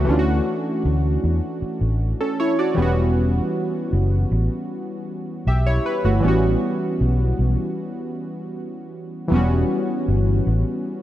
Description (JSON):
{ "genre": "contemporary R&B", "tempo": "78 BPM", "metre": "4/4", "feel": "straight", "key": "E dorian", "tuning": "A4 = 440 Hz", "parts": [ { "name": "warm analog keys", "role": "accompaniment", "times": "0.0-11.0 s", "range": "E3 to E5", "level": "-22 LUFS", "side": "equal", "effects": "chorus" }, { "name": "vintage muted fingered electric bass", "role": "bass", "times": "0.0-10.6 s", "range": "E1 to E2", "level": "-19 LUFS", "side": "equal", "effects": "none" } ], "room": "light reverb", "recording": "none", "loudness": "-18 LUFS", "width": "side -13 dB against mid", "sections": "0.0-9.3 A section; 9.3-11.0 B section", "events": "break 7.8-9.3", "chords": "0.1 Dmaj9; 2.8 Em69; 6.2 A13; 9.3 Em69" }